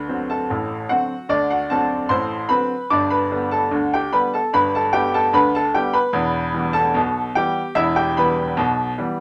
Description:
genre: ragtime piano.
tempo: 74 BPM.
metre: 2/4.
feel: straight.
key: G major.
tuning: A4 = 438 Hz.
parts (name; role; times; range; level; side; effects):
clear baby grand piano; solo; 0.0-9.2 s; E1 to D6; -20 LUFS; equal; none.
room: moderate club reverb, RT60 0.5 s.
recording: none.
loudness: -20 LUFS.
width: mono.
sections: 0.0-9.2 A section.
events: none.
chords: 0.0 D7; 2.9 G; 6.1 Em.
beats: 0.50 | 1.30 2.11 | 2.92 3.73 | 4.53 5.34 | 6.15 6.95 | 7.76 8.56.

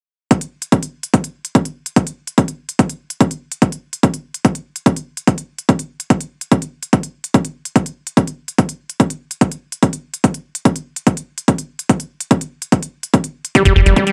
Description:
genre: psychedelic trance.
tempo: 145 BPM.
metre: 4/4.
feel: straight.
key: unclear.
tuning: A4 = 440 Hz.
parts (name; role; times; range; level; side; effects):
electronic hi-hat; drums; 0.3-14.1 s; none; -28 LUFS; equal; overdrive.
electronic kick drum; drums; 0.3-14.0 s; none; -15 LUFS; equal; overdrive, high-pass filter on kick.
evolving wavetable pad; sustained chords; 13.8-14.1 s; G3 to G4; -30 LUFS; equal; none.
liquid acid bass; riff; 13.6-14.1 s; G3; -16 LUFS; equal; phaser, sidechain pumping, tape echo.
plucky analog bass; bass; 13.7-13.9 s; G1; -12 LUFS; equal; none.
room: little or no reverb.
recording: dark, warm production.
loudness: -18 LUFS.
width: mono.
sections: 0.3-14.1 A section.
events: none.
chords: 0.3 G5.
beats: | 0.31 0.72 1.14 1.55 | 1.96 2.38 2.79 3.21 | 3.62 4.03 4.45 4.86 | 5.27 5.69 6.10 6.52 | 6.93 7.34 7.76 8.17 | 8.59 9.00 9.41 9.83 | 10.24 10.65 11.07 11.48 | 11.89 12.31 12.72 13.14 | 13.55 13.96.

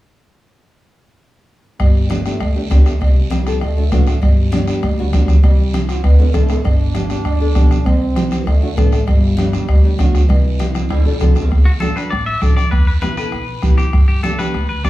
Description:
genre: latin, cumbia.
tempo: 198 BPM.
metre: 4/4.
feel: straight.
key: G major.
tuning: A4 = 435 Hz.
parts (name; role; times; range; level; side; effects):
dark trombone; second line; 1.8-11.3 s; D3 to D4; -24 LUFS; right 3 dB; tape echo.
upright bass; bass; 1.8-14.9 s; G1 to G2; -16 LUFS; equal; none.
bombo; percussion; 1.8-14.9 s; none; -15 LUFS; equal; none.
congas; percussion; 1.8-14.9 s; none; -24 LUFS; right 2 dB; none.
cowbell and timbales; percussion; 1.8-11.5 s; none; -30 LUFS; right 4 dB; none.
guiro; percussion; 1.8-14.9 s; none; -35 LUFS; right 4 dB; none.
nylon-string guitar; accompaniment; 2.1-14.9 s; A3 to B4; -24 LUFS; left 3 dB; none.
clean electric guitar; melody; 11.7-14.9 s; F#4 to E5; -22 LUFS; left 3 dB; spring reverb.
room: wet studio reverb, RT60 0.6 s.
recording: heard from further back in the room, small room reverb.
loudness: -12 LUFS.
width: side -16 dB against mid.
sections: 1.8-11.5 A section; 11.5-14.9 B section.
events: drum fill 5.9-6.7, 10.9-11.5.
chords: 1.8 Gadd9; 3.0 C; 3.6 D; 4.2 G; 5.4 C; 6.0 D5; 6.7 G; 7.9 C; 8.5 D5; 9.1 G; 10.3 C; 10.9 D; 12.7 Em; 13.9 G.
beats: | 1.80 2.10 2.40 2.71 | 3.01 3.31 3.62 3.92 | 4.22 4.53 4.83 5.13 | 5.44 5.74 6.04 6.35 | 6.65 6.95 7.26 7.56 | 7.86 8.17 8.47 8.77 | 9.08 9.38 9.69 9.99 | 10.29 10.60 10.90 11.20 | 11.51 11.81 12.11 12.42 | 12.72 13.03 13.33 13.63 | 13.94 14.24 14.55 14.85.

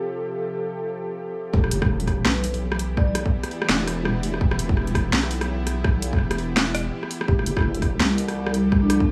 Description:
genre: half-time drum and bass.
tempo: 167 BPM.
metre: 4/4.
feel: swing 58% on 16ths, half-time.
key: E phrygian.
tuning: A4 = 445 Hz.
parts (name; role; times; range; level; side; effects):
bowed-like drone; sustained chords; 0.0-9.1 s; C3 to A4; -33 LUFS; equal; built-in reverb, vintage 12-bit sampler grit, sidechain pumping.
vibraphone with medium mallets; melody; 1.5-3.1, 7.3-9.1 s; B3 to D5; -32 LUFS; equal; vintage 12-bit sampler grit, digital delay.
deep soft wobble bass; bass; 1.5-9.1 s; E1 to C2; -27 LUFS; equal; chorus.
electronic kick drum; drums; 1.5-9.1 s; none; -24 LUFS; equal; none.
impact; sound effects; 1.5-3.0 s; none; -34 LUFS; equal; none.
drum and bass drum kit; drums; 1.6-9.0 s; hi-hat, rim click, snare drum; -27 LUFS; equal; overdrive.
room: light reverb, digital ambience.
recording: small room ambience.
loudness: -23 LUFS.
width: mono.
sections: 0.0-1.5 A section; 1.5-9.1 B section.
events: drop 1.5-9.1; impact 1.5-3.0.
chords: 0.0 Fadd9; 1.5 Em; 7.3 Fadd9.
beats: | 0.10 0.46 0.81 1.17 | 1.53 1.89 2.25 2.61 | 2.97 3.33 3.69 4.05 | 4.41 4.77 5.13 5.49 | 5.84 6.20 6.56 6.92 | 7.28 7.64 8.00 8.36 | 8.72 9.08.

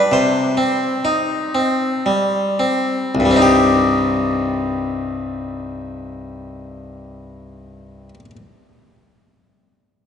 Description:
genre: classical, baroque-style suite movement for harpsichord.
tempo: 37 BPM (dotted quarters).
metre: 6/8.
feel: rubato.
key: C minor.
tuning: A4 = 440 Hz.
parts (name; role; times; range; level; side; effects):
harpsichord; solo; 0.0-8.4 s; C2 to C5; -16 LUFS; left 1 dB; none.
room: wet church reverb, RT60 3.7 s.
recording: dark, warm production, nothing above 10.7 kHz.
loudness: -15 LUFS.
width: side -7 dB against mid.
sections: 0.0-3.1 A section; 3.1-9.6 B section.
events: slowing down 0.0-3.1.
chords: 0.1 Cm.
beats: | 0.11 1.54 | 3.14 4.76 | 6.39 8.01.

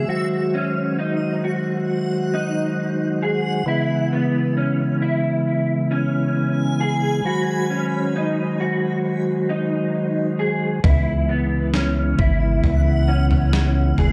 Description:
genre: dream pop.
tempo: 67 BPM.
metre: 4/4.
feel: straight.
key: C# minor.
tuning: A4 = 440 Hz.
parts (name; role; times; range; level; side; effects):
percussive tonewheel organ; sustained chords; 0.0-14.1 s; C#3 to B#4; -24 LUFS; equal; fast rotary speaker, plate reverb.
electric guitar through a small old amp; arpeggios; 0.0-14.1 s; B3 to G#4; -27 LUFS; equal; ensemble chorus, tape echo.
backwards swelling texture; texture; 0.0-14.1 s; E5 to F#5; -35 LUFS; equal; built-in reverb, tape echo, plate reverb.
chorused synth bass; bass; 10.8-14.1 s; F#1 to C#2; -22 LUFS; equal; none.
gated 80s digital drum machine; drums; 10.8-14.1 s; kick drum, snare drum, toms; -23 LUFS; equal; gated reverb, gated reverb snare.
room: light reverb.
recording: dark, warm production.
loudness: -21 LUFS.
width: mono.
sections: 0.0-14.1 A section.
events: none.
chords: 0.1 G#7; 3.7 C#m7; 7.3 G#7; 10.8 C#m7.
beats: | 0.10 0.99 1.89 2.78 | 3.68 4.57 5.47 6.36 | 7.26 8.15 9.05 9.95 | 10.84 11.74 12.63 13.53.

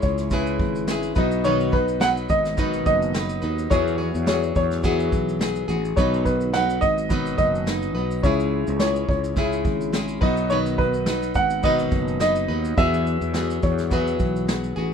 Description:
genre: acoustic pop.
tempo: 106 BPM.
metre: 4/4.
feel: swing 55% on 16ths.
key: B major.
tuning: A4 = 442 Hz.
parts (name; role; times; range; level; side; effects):
dark upright piano; melody; 0.0-14.7 s; B4 to F#5; -24 LUFS; equal; none.
nylon-string guitar; accompaniment; 0.0-14.9 s; B2 to B4; -26 LUFS; equal; none.
warm concert grand piano; accompaniment; 0.0-14.9 s; B3 to F#5; -30 LUFS; left 3 dB; none.
sustaining fretless electric bass; bass; 0.0-14.9 s; F#1 to E2; -26 LUFS; equal; none.
vintage brush drum kit; drums; 0.0-14.8 s; kick drum, shaker, snare drum; -26 LUFS; right 1 dB; none.
room: light reverb.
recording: minimal, uncompressed stereo recording.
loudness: -20 LUFS.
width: side -7 dB against mid.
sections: 0.0-14.9 A section.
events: none.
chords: 0.0 C#m; 1.2 B; 3.7 Eadd9; 6.0 B; 8.2 C#m; 10.2 B; 12.8 Eadd9.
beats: 0.31 0.88 | 1.45 2.01 2.58 3.14 | 3.71 4.27 4.84 5.40 | 5.97 6.54 7.10 7.67 | 8.23 8.80 9.37 9.94 | 10.50 11.07 11.64 12.21 | 12.78 13.34 13.91 14.48.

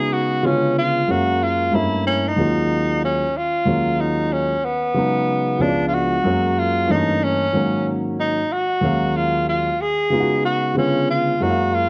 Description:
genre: hip hop.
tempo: 93 BPM.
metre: 4/4.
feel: swing 65% on 16ths.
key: Eb minor.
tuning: A4 = 436 Hz.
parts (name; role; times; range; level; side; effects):
breathy tenor saxophone; melody; 0.0-11.9 s; Cb4 to Ab4; -22 LUFS; equal; none.
dark baby grand piano; accompaniment; 0.0-11.9 s; Db2 to F5; -23 LUFS; equal; none.
room: moderate echo chamber reverb, RT60 1.4 s.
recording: dark, warm production.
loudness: -20 LUFS.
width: mono.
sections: 0.0-3.7 A section; 3.7-11.9 A section.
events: none.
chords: 0.4 Db7b9; 1.1 Gbmaj9; 1.7 Gdim7; 2.4 Ebm11; 5.0 Db7sus4; 5.6 Db7b9; 6.2 Gbmaj9; 6.9 Gdim7; 7.5 Ab9sus4; 8.8 Ebm11; 10.1 Db7sus4; 10.8 Db7b9.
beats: 0.44 | 1.09 1.73 2.38 3.02 | 3.67 4.31 4.96 5.60 | 6.25 6.89 7.54 8.18 | 8.83 9.47 10.12 10.77 | 11.41.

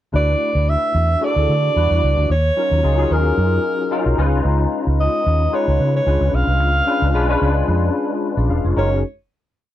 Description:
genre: polished 1980s jazz-funk pop.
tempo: 111 BPM.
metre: 4/4.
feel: swing 54% on 16ths.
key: unclear.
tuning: A4 = 440 Hz.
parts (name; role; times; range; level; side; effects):
barky tine electric piano; accompaniment; 0.1-9.0 s; F#3 to A#5; -21 LUFS; left 3 dB; ensemble chorus.
vintage muted fingered electric bass; bass; 0.1-9.0 s; E1 to D3; -17 LUFS; equal; none.
breathy alto saxophone; melody; 0.2-9.0 s; A#4 to E#5; -20 LUFS; right 1 dB; slapback echo.
room: little or no reverb.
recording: dry, close 1970s-style studio recording.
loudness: -15 LUFS.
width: side -12 dB against mid.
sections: 0.1-8.8 verse; 8.8-9.7 final chord.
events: tine electric piano fill 3.6-4.5.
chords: 0.1 D69; 1.8 Em9; 2.3 D#m9; 4.2 C#7; 6.1 C#7b9; 8.8 F#6.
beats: | 0.14 0.68 1.22 1.76 | 2.29 2.83 3.37 3.91 | 4.45 4.99 5.53 6.07 | 6.61 7.15 7.69 8.23 | 8.77.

